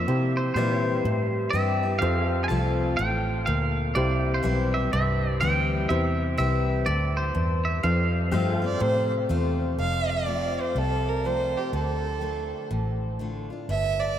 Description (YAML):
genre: country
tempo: 124 BPM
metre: 4/4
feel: swing 62% on 8ths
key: F major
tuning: A4 = 435 Hz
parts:
  - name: twangy electric guitar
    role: melody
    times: 0.0-9.3 s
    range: C5 to A5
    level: -29 LUFS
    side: right 2 dB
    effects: none
  - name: bright upright piano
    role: accompaniment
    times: 0.0-9.7 s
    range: E4 to C5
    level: -35 LUFS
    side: right 2 dB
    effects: none
  - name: picked steel-string acoustic guitar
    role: accompaniment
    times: 0.0-14.2 s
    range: F2 to F4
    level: -30 LUFS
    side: left 4 dB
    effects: none
  - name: pedal steel guitar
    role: sustained chords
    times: 0.0-9.8 s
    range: G4 to F5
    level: -35 LUFS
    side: left 1 dB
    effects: none
  - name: vintage muted fingered electric bass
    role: bass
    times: 0.0-14.2 s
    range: F1 to C3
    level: -26 LUFS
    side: equal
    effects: none
  - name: rich fiddle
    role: second line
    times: 8.7-14.2 s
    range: G4 to F5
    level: -28 LUFS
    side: right 3 dB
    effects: none
room: wet cathedral reverb, RT60 6.2 s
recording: in a vast, echoing space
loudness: -23 LUFS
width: side -10 dB against mid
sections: 0.0-9.8 A section; 9.8-14.2 B section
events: fiddle solo 9.8-14.2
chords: 0.1 C; 2.0 F; 4.0 C; 7.8 F; 11.7 Dm; 13.7 G5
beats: | 0.07 0.56 1.04 1.53 | 2.02 2.50 2.99 3.47 | 3.96 4.44 4.93 5.41 | 5.90 6.38 6.87 7.35 | 7.84 8.32 8.81 9.30 | 9.78 10.27 10.76 11.24 | 11.73 12.22 12.71 13.20 | 13.68 14.17